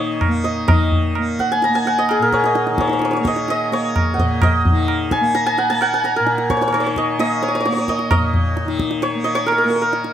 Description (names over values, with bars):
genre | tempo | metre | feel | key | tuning
indian classical, Hindustani | 130 BPM | 4/4 | straight | Bb raga malkauns | A4 = 441 Hz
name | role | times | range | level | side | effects
santur | melody | 0.0-10.1 s | Ab4 to Bb5 | -18 LUFS | equal | none
tanpura | drone | 0.0-10.1 s | Bb2 to Bb3 | -23 LUFS | left 1 dB | none
tabla | percussion | 0.2-10.1 s | none | -19 LUFS | equal | none
room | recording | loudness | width
moderate small room reverb, RT60 0.6 s | none | -15 LUFS | side -10 dB against mid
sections
0.7-10.1 A section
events
speeding up 0.0-10.1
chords
none